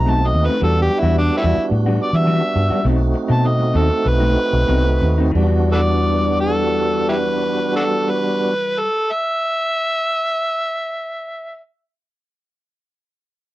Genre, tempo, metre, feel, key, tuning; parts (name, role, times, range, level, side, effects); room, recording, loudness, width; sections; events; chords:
blues; 88-110 BPM; 4/4; straight; E minor; A4 = 440 Hz
overdriven harmonica; melody; 0.0-11.6 s; A3 to A#5; -20 LUFS; equal
tonewheel organ; accompaniment; 0.0-8.5 s; G3 to F#4; -22 LUFS; right 3 dB; slow rotary speaker, overdrive
vintage muted fingered electric bass; bass; 0.0-8.5 s; B1 to E3; -17 LUFS; equal
electric guitar through a small old amp; stabs; 0.1-9.0 s; B2 to F#4; -24 LUFS; left 5 dB
little or no reverb; dry, close 1970s-style studio recording; -15 LUFS; side -16 dB against mid
0.0-5.4 A section; 5.4-10.8 B section
slowing down 0.6-5.4
0.0 B7b9; 0.6 Em9; 2.9 B7b9; 5.4 Em9